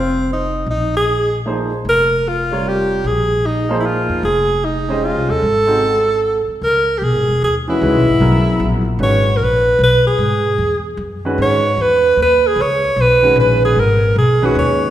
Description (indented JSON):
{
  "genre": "modal jazz",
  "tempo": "151 BPM",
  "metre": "3/4",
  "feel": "swing 64% on 8ths",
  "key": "Bb dorian, C# dorian from 6.6 s",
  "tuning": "A4 = 440 Hz",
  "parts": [
    { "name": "clear alto saxophone", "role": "melody", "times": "0.0-14.9 s", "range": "C4 to C#5", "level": "-15 LUFS", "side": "right 1 dB", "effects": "none" },
    { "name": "upright bass", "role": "bass", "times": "0.0-14.9 s", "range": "E1 to G#2", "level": "-19 LUFS", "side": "left 1 dB", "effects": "none" },
    { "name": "clear grand piano", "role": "accompaniment", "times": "1.5-9.2, 11.2-14.9 s", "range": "C3 to Eb5", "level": "-20 LUFS", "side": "equal", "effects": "none" }
  ],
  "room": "wet recital hall reverb, RT60 1.7 s",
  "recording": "recorded in a church or concert hall",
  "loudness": "-13 LUFS",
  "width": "side -12 dB against mid",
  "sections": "0.0-6.6 A section; 6.6-14.9 B section",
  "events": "none",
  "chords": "0.0 Bb9sus4; 5.4 Ab5; 6.6 C#m9"
}